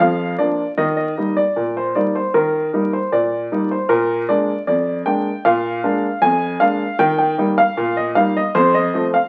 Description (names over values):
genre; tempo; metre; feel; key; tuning
ragtime piano; 77 BPM; 2/4; straight; Eb major; A4 = 440 Hz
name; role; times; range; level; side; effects
bright upright piano; solo; 0.0-9.3 s; F2 to Ab5; -18 LUFS; equal; none
room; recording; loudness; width
moderate studio reverb, RT60 0.8 s; very old 78 rpm record, vinyl crackle; -18 LUFS; mono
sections
0.8-9.3 A section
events
none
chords
0.0 Bb; 0.8 Eb; 3.9 Bb7; 7.0 Eb; 8.6 F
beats
| 0.78 1.56 | 2.34 3.12 | 3.90 4.68 | 5.46 6.23 | 7.00 7.78 | 8.55